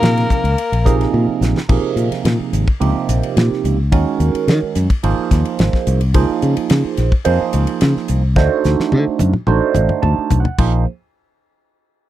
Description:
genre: electric jazz fusion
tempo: 108 BPM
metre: 4/4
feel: straight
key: unclear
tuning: A4 = 440 Hz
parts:
  - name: bright soprano saxophone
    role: melody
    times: 0.0-1.1 s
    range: Bb4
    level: -24 LUFS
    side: left 2 dB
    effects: tape echo
  - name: clear tenor saxophone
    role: second line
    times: 0.0-1.1 s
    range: Bb3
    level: -23 LUFS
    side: left 8 dB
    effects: none
  - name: barky tine electric piano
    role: accompaniment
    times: 0.0-10.8 s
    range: C3 to A5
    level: -19 LUFS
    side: right 8 dB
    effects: phaser
  - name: fingered electric bass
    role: bass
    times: 0.0-10.8 s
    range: Ab1 to Eb3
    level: -16 LUFS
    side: left 1 dB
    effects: none
  - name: damped 70s drum kit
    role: drums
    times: 0.0-10.7 s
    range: crash cymbal, hi-hat, kick drum, ride cymbal, snare drum, toms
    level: -19 LUFS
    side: left 1 dB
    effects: none
room: little or no reverb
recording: dry, close 1970s-style studio recording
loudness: -14 LUFS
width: side -13 dB against mid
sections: 0.0-1.7 A section; 1.7-10.6 B section; 10.6-12.1 C section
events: drum fill 1.1-1.7, 8.4-10.6; tine electric piano fill 9.8-10.6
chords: 0.0 Bb7sus2; 1.7 Bbm9; 3.9 Ebm7; 5.0 Ab69; 6.1 Db69; 8.4 D7b9; 10.6 Bbsus2

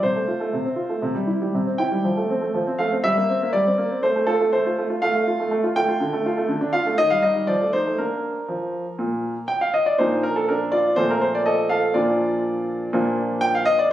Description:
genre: classical-period piano sonatina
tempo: 122 BPM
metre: 4/4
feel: straight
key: F major, Bb major from 6.0 s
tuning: A4 = 440 Hz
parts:
  - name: clear grand piano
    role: solo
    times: 0.0-13.9 s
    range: Bb2 to G5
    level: -19 LUFS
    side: equal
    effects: none
room: moderate recital hall reverb, RT60 1.3 s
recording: recorded on a phone in the room, club reverb, compression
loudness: -19 LUFS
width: side -12 dB against mid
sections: 0.0-10.0 A section; 10.0-13.9 B section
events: none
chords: 0.0 F/C; 1.0 C; 2.1 F; 3.0 C7/G; 4.0 F/A; 6.0 Dm; 7.0 Eb; 7.5 F7; 8.0 Bb

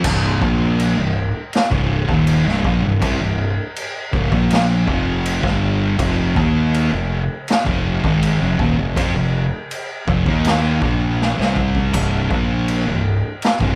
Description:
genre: stoner and doom metal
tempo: 81 BPM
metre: 4/4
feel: straight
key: C minor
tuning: A4 = 444 Hz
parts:
  - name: thick fuzz guitar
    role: riff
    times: 0.0-13.8 s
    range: C2 to Eb4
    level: -23 LUFS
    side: equal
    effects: distortion
  - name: thick fuzz guitar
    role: riff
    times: 0.0-13.8 s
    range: C2 to Eb4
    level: -24 LUFS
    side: equal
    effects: distortion
  - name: fuzz fingered electric bass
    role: bass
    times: 0.0-13.8 s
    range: C1 to F2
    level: -26 LUFS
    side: equal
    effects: overdrive
  - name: raw garage drum kit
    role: drums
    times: 0.0-13.8 s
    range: crash cymbal, kick drum, snare drum, splash cymbal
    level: -24 LUFS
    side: equal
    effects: none
room: light reverb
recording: band playing live in one room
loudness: -18 LUFS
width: mono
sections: 0.0-13.8 A section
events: drum fill 11.2-11.9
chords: 0.0 Cm; 6.0 F5; 11.9 C5

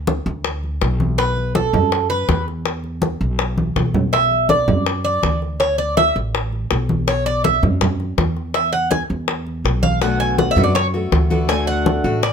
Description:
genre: latin, Cuban son and guajira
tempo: 163 BPM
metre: 4/4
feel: straight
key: unclear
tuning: A4 = 440 Hz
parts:
  - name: upright bass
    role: bass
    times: 0.0-12.3 s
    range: A1 to F#2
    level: -21 LUFS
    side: equal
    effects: none
  - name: bongos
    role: percussion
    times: 0.1-12.3 s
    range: none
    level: -23 LUFS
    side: left 7 dB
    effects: none
  - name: congas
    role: percussion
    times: 0.1-12.3 s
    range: none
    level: -22 LUFS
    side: right 1 dB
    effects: none
  - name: Cuban tres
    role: arpeggios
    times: 1.2-12.3 s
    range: A4 to G#5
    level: -18 LUFS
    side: right 2 dB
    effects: none
  - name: picked old ladder-braced acoustic guitar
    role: accompaniment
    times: 10.0-12.3 s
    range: B2 to F#4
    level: -22 LUFS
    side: left 3 dB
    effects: none
room: light reverb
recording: close, detailed microphones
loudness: -16 LUFS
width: side -7 dB against mid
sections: 0.0-12.3 A section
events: Cuban tres solo 0.0-12.3; drum fill 3.6-4.1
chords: 0.0 Bm; 1.2 B5; 2.7 E5; 4.1 Bm; 5.6 D5; 7.1 B5; 8.6 E5; 10.0 Bm7; 11.5 D

